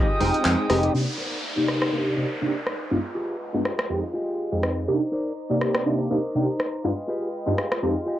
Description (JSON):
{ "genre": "filtered disco house", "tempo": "122 BPM", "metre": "4/4", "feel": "swing 55% on 16ths", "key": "C minor", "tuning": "A4 = 438 Hz", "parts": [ { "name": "funky polysynth comp", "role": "accompaniment", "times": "0.0-7.9 s", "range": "F2 to G5", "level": "-23 LUFS", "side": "equal", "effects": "chorus, phaser, low-pass filter" }, { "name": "clear chamber violin section", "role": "sustained chords", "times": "0.0-8.2 s", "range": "Ab3 to Eb6", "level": "-31 LUFS", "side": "equal", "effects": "vintage 12-bit sampler grit, low-pass filter" }, { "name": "electric guitar with an envelope filter", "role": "riff", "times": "0.0-8.2 s", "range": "Eb4 to F5", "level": "-30 LUFS", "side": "equal", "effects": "low-pass filter" }, { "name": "modern bright fingered electric bass", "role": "bass", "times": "0.0-0.9 s", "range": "F1 to F2", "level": "-25 LUFS", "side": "equal", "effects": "tube saturation, low-pass filter" }, { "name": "house drum kit", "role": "drums", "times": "0.2-7.8 s", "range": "handclaps, hi-hat, rim click", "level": "-27 LUFS", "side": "equal", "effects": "cassette tape" }, { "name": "downlifter", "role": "sound effects", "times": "0.9-4.9 s", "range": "none", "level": "-34 LUFS", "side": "equal", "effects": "none" } ], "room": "moderate studio ambience, RT60 0.5 s", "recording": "home recording on cassette", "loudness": "-22 LUFS", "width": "side -13 dB against mid", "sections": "0.9-8.2 A section", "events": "band accent 0.5", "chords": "0.0 Fm9; 0.9 Cm9; 2.9 G7b9b13; 3.9 Fm9; 4.9 Cm9; 6.8 G7b9b13" }